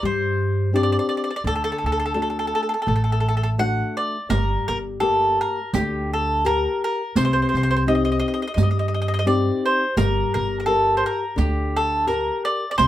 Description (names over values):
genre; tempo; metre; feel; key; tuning
italian folk, Italian serenade; 85 BPM; 4/4; swing 54% on 8ths; G harmonic minor; A4 = 440 Hz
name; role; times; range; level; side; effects
mandolin; melody; 0.0-12.9 s; G4 to F#5; -22 LUFS; right 1 dB; none
nylon-string guitar; accompaniment; 0.0-12.9 s; C3 to Bb4; -25 LUFS; left 3 dB; none
upright bass; bass; 0.0-12.9 s; G1 to G2; -24 LUFS; right 1 dB; none
riq; percussion; 4.3-12.9 s; none; -25 LUFS; right 5 dB; none
room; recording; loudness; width
moderate studio ambience, RT60 0.5 s; none; -19 LUFS; side -13 dB against mid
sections
0.0-12.9 A section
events
none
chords
0.0 Csus2; 1.4 D; 4.3 Gm; 7.2 Cm; 10.0 Gm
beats
0.03 0.74 | 1.45 2.16 2.87 3.58 | 4.30 5.02 5.73 6.44 | 7.15 7.86 8.56 9.27 | 9.97 10.67 11.37 12.08 | 12.78